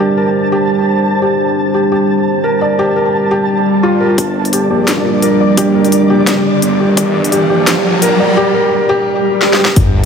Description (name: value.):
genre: half-time drum and bass.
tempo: 172 BPM.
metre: 4/4.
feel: swing 56% on 16ths, half-time.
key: unclear.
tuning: A4 = 443 Hz.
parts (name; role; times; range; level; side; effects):
deep dark ambient pad; sustained chords; 0.0-10.1 s; G3 to A5; -15 LUFS; equal; chorus, built-in reverb, vintage 12-bit sampler grit, sidechain pumping.
felt-muted upright piano; arpeggios; 0.0-9.8 s; F4 to D5; -15 LUFS; equal; low-pass filter, digital delay.
flickering grainy texture; texture; 0.0-10.1 s; D5 to A5; -20 LUFS; equal; built-in reverb.
swell, riser and sub drop; sound effects; 3.6-10.1 s; none; -17 LUFS; left 1 dB; none.
phased detuned saw bass; bass; 4.2-10.1 s; F1 to Bb1; -18 LUFS; equal; phaser, high-pass filter.
drum and bass drum kit; drums; 4.2-9.8 s; hi-hat, snare drum, toms; -17 LUFS; left 1 dB; high-pass filter on cymbals, studio ambience, high-pass filter on hats, high-pass filter on snare, high-pass filter on toms.
electronic kick drum; drums; 4.2-7.0, 9.8 s; none; -12 LUFS; left 1 dB; high-pass filter on kick, studio ambience.
room: moderate huge ambient reverb, RT60 5.5 s.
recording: none.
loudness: -10 LUFS.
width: side -6 dB against mid.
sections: 0.0-4.2 A section; 4.2-9.8 B section.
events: swell 3.6-4.2, 9.1-9.8; build-up 4.2-9.8; riser 4.2-8.4; filter sweep on felt piano 4.2-9.8; drum fill 9.4-9.8; impact 9.8.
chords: 0.0 Gmadd9.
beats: | 0.00 0.34 0.69 1.04 | 1.39 1.74 2.09 2.44 | 2.79 3.14 3.48 3.83 | 4.18 4.53 4.88 5.23 | 5.58 5.93 6.28 6.62 | 6.97 7.32 7.67 8.02 | 8.37 8.72 9.07 9.41 | 9.76.